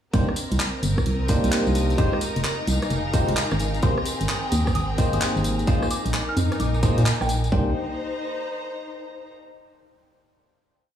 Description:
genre	UK garage, two-step garage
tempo	130 BPM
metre	4/4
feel	swing 65% on 16ths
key	C minor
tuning	A4 = 439 Hz
part	rich chamber violin section	sustained chords	0.1-7.5 s	Bb4 to Bb5	-35 LUFS	right 1 dB	vintage 12-bit sampler grit, sidechain pumping
part	bell-like tine electric piano	stabs	0.1-7.7 s	Ab3 to C5	-28 LUFS	equal	lush chorus, dub echo
part	organ-like FM bass	bass	0.1-7.7 s	F1 to Bb2	-23 LUFS	equal	sidechain pumping
part	electronic kick drum	drums	0.1-7.6 s	none	-21 LUFS	equal	none
part	garage drum kit	drums	0.1-7.5 s	handclaps, hi-hat, rim click	-30 LUFS	equal	none
part	tambourine	percussion	0.1-7.5 s	none	-37 LUFS	left 2 dB	none
part	clear studio string section	texture	0.1-9.3 s	C4 to Eb6	-31 LUFS	left 2 dB	sidechain pumping
part	soft synth bell	melody	3.8-7.7 s	G5 to F6	-33 LUFS	equal	chorus, phaser, vintage 12-bit sampler grit, dub echo
room	light reverb, studio ambience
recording	played on a big sound system in a bare room, large studio reverb, studio reverb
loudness	-20 LUFS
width	side -10 dB against mid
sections	0.1-7.5 groove; 7.5-9.4 final chord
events	none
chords	0.1 Cm7; 2.0 Fm7; 3.6 Abmaj7; 5.7 Bb7sus4; 7.5 Cm7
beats	| 0.14 0.60 1.06 1.52 | 1.98 2.44 2.91 3.37 | 3.83 4.29 4.75 5.21 | 5.67 6.14 6.60 7.06 | 7.52 7.98 8.45 8.91

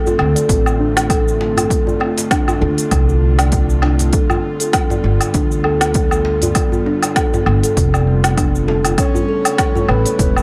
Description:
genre	organic downtempo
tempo	99 BPM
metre	4/4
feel	swing 56% on 16ths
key	D dorian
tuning	A4 = 440 Hz
part	airy breathy pad	sustained chords	0.0-10.4 s	C#3 to F4	-27 LUFS	equal	chorus, vintage 12-bit sampler grit, sidechain pumping
part	kalimba	arpeggios	0.0-10.4 s	B3 to D5	-22 LUFS	equal	low-pass filter, digital delay
part	organic electronic drum kit	drums	0.1-10.4 s	cabasa, hi-hat, snare drum, woodblock	-23 LUFS	equal	none
part	djembe	percussion	0.1-10.3 s	none	-27 LUFS	equal	none
part	upright bass	bass	0.2-10.4 s	E1 to D2	-19 LUFS	equal	sidechain pumping
part	electronic kick drum	drums	0.5-10.3 s	none	-21 LUFS	equal	overdrive
part	breathy flute-like synth lead	melody	9.0-10.4 s	B4 to C#5	-26 LUFS	equal	lush chorus, digital delay
room	light reverb, digital ambience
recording	dark, warm production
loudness	-15 LUFS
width	mono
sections	0.0-10.4 A section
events	filter sweep on kalimba 0.0-10.4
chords	0.0 Dm7; 4.1 G7; 9.0 A7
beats	0.50 1.10 | 1.71 2.31 2.92 3.53 | 4.13 4.74 5.34 5.95 | 6.56 7.16 7.77 8.38 | 8.98 9.59 10.19

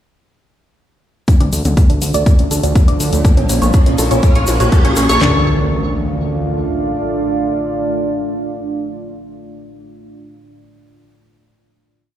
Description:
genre	melodic techno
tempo	122 BPM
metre	4/4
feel	straight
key	D harmonic minor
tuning	A4 = 441 Hz
part	deep dark ambient pad	sustained chords	1.9-9.9 s	F3 to F5	-21 LUFS	right 1 dB	chorus, built-in reverb, sidechain pumping
part	tight sequenced synth	arpeggios	1.3-5.4 s	C#4 to D5	-20 LUFS	right 1 dB	chorus, phaser, sidechain pumping, ping-pong delay
part	house drum kit	drums	1.3-5.3 s	handclaps, kick drum, snare drum, toms	-11 LUFS	equal	overdrive
part	house drum kit	drums	1.3-5.3 s	hi-hat, toms	-23 LUFS	left 2 dB	overdrive, sidechain pumping on hats, sidechain pumping on toms
part	egg shaker	percussion	1.3-5.2 s	none	-26 LUFS	left 2 dB	none
part	riser and impact	sound effects	2.8-10.0 s	none	-25 LUFS	left 1 dB	none
part	fat analog bass	bass	1.4-6.7 s	Bb1 to D2	-16 LUFS	equal	sidechain pumping
room	light reverb, digital ambience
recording	played on a big sound system in a bare room, large studio reverb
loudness	-12 LUFS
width	side -11 dB against mid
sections	1.3-5.2 build; 5.2-9.1 final chord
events	build-up 1.3-5.2; drum fill 1.3-5.2; filter sweep on synth arpeggio sound 1.3-5.2; riser 2.8-5.2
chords	1.3 Dm; 3.2 Bbm; 5.2 Dm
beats	| 1.28 1.77 2.26 2.76 | 3.25 3.74 4.23 4.72 | 5.21 5.71 6.20 6.69 | 7.18 7.67 8.17 8.66

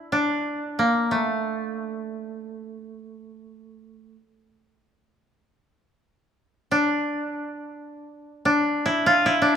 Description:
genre	japanese traditional, Japanese chamber music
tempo	free time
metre	none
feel	none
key	D hirajoshi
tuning	A4 = 440 Hz
part	koto	solo	0.0-9.6 s	A3 to F4	-22 LUFS	equal	none
room	moderate recital hall reverb, RT60 1.7 s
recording	minimal, uncompressed stereo recording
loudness	-21 LUFS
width	side -8 dB against mid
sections	0.0-9.6 A section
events	none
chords	none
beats	free time

